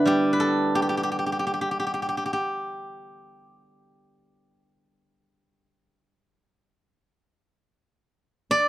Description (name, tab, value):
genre	chinese traditional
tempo	85 BPM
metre	4/4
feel	uneven beats, rubato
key	G gong mode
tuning	A4 = 440 Hz
part	steel-string zither	solo	0.0-8.7 s	D3 to E5	-22 LUFS	equal	none
room	wet booth ambience, RT60 0.2 s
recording	dry, close 1970s-style studio recording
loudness	-23 LUFS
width	side -15 dB against mid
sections	0.0-8.7 A section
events	none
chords	none